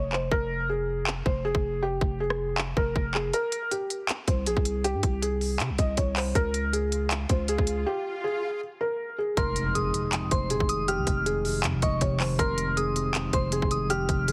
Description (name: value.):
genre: hip hop, trap.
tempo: 159 BPM.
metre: 4/4.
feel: half-time.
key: F minor.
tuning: A4 = 440 Hz.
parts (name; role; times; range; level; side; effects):
felt-muted upright piano; melody; 0.0-14.3 s; G4 to Eb5; -32 LUFS; equal; delay.
growling 808-style bass; bass; 0.0-14.3 s; Eb1 to C3; -33 LUFS; equal; none.
trap drum kit; drums; 0.1-14.3 s; handclaps, hi-hat, kick drum, rim click; -30 LUFS; equal; none.
swell and impact; sound effects; 6.9-10.9 s; none; -41 LUFS; equal; none.
soft synth bell; second line; 9.4-14.3 s; C6 to F6; -34 LUFS; equal; chorus, delay.
mellow tine electric piano; accompaniment; 9.4-14.3 s; F2 to Eb3; -34 LUFS; equal; none.
pipe organ, stopped flute; sustained chords; 9.4-14.3 s; C3 to Eb4; -38 LUFS; equal; none.
room: little or no reverb.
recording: heavily compressed radio sound.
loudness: -27 LUFS.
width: mono.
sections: 0.0-9.4 A section; 9.4-14.3 B section.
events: break 0.0-3.3, 7.9-9.4; kick muted 3.3-4.1; swell 6.9-9.4; impact 9.4-10.9.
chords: 0.0 Fm; 3.3 C5; 6.4 Db5; 9.4 Fm7.